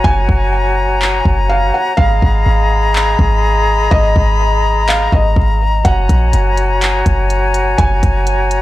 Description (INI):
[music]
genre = hip hop, atmospheric cloud-rap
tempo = 124 BPM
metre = 4/4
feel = half-time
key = F# major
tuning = A4 = 440 Hz
[part]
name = felt-muted upright piano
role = melody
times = 0.0-8.6 s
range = D#5 to G#5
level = -20 LUFS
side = right 1 dB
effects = tape echo
[part]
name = small flute group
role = sustained chords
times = 0.0-8.6 s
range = F#4 to B5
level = -16 LUFS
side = left 2 dB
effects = sidechain pumping
[part]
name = clean 808-style bass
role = bass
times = 0.0-8.6 s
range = F#1 to A#1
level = -14 LUFS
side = equal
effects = none
[part]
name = smooth R&B drum kit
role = drums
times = 0.0-8.6 s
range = handclaps, hi-hat, kick drum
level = -16 LUFS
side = equal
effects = none
[sound]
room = little or no reverb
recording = dry, gritty hardware recording, transformer saturation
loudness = -11 LUFS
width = side -16 dB against mid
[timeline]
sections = 0.0-8.6 A section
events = break 0.0-5.8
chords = 0.0 F#add9; 2.0 G#madd9; 5.8 F#add9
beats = | 0.04 0.53 1.01 1.50 | 1.98 2.46 2.95 3.43 | 3.92 4.40 4.88 5.37 | 5.85 6.33 6.82 7.30 | 7.79 8.27